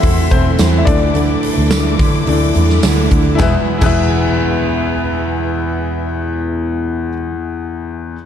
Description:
piano-driven pop; 107 BPM; 4/4; straight; A4 = 441 Hz
bright concert grand piano; accompaniment; 0.0-8.2 s; E2 to F#5; -18 LUFS; left 6 dB
warm studio string section; sustained chords; 0.0-6.4 s; B3 to D6; -26 LUFS; left 4 dB
fingerpicked steel-string acoustic guitar; riff; 0.0-7.4 s; E2 to E4; -20 LUFS; right 6 dB
vintage muted picked electric bass; bass; 0.0-7.1 s; E1 to D3; -16 LUFS; equal
huge arena drum kit; drums; 0.0-4.0 s; crash cymbal, hi-hat, kick drum, snare drum; -17 LUFS; equal
tambourine; percussion; 0.6-4.0 s; -29 LUFS; right 12 dB
light reverb, studio reverb; dark, warm production; -13 LUFS; side -9 dB against mid
0.0-3.4 A section; 3.4-5.6 B section
grand piano solo 0.0-3.4
0.0 Am/E; 0.9 Dsus2; 3.4 E
0.03 0.59 | 1.15 1.71 2.27 2.83 | 3.39 3.95 4.51 5.08

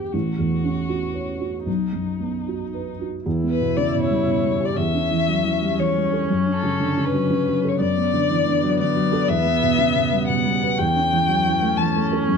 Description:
neoclassical piano and strings; 119 BPM; 3/4; rubato; E dorian; A4 = 440 Hz
muted violin; melody; 0.0-12.0 s; D#4 to A5; -23 LUFS; left 7 dB
felt-muted upright piano; accompaniment; 0.0-12.4 s; A1 to C#5; -21 LUFS; right 2 dB
muted viola; accompaniment; 3.3-12.4 s; B3 to E4; -28 LUFS; right 4 dB
light reverb; dark, warm production; -19 LUFS; side -6 dB against mid
0.0-3.2 A section; 3.2-12.4 B section
0.1 A6; 1.7 B; 3.2 Em; 4.8 A7/E (rootless); 6.3 F#m; 7.8 D6/F#; 9.3 Em; 10.8 A7/E
| 0.13 0.63 1.14 | 1.66 2.19 2.72 | 3.25 3.76 4.27 | 4.77 5.28 5.79 | 6.29 6.80 7.30 | 7.80 8.30 8.79 | 9.29 9.79 10.29 | 10.78 11.28 11.78 | 12.28

